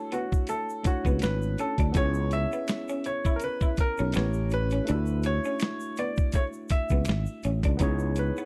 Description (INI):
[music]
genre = R&B, neo-soul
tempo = 82 BPM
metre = 4/4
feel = swing 55% on 16ths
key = unclear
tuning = A4 = 440 Hz
[part]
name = warm grand piano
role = melody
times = 0.0-8.5 s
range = F#4 to E5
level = -35 LUFS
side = equal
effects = none
[part]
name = barky tine electric piano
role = accompaniment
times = 0.0-8.5 s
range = A3 to E5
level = -37 LUFS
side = equal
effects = overdrive
[part]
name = electric guitar through a small old amp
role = second line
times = 0.1-8.5 s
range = A3 to E4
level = -37 LUFS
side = equal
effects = none
[part]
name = boom bap sampler-style drum kit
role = drums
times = 0.1-8.4 s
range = hi-hat, kick drum, snare drum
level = -29 LUFS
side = equal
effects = none
[part]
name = tube shaker and finger snaps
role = percussion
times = 0.1-8.5 s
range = none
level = -48 LUFS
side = equal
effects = none
[part]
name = sustaining fretless electric bass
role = bass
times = 0.9-8.3 s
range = G#1 to D2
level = -30 LUFS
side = equal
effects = none
[sound]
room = small room ambience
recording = dry, close 1970s-style studio recording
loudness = -27 LUFS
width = mono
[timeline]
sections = 0.0-8.5 A section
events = grand piano solo 0.0-8.5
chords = 0.0 Dmaj9; 1.9 C#m7; 4.1 A7b9; 4.9 Dmaj9; 7.8 C#m9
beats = 0.49 1.22 | 1.95 2.68 3.41 4.14 | 4.88 5.61 6.34 7.07 | 7.80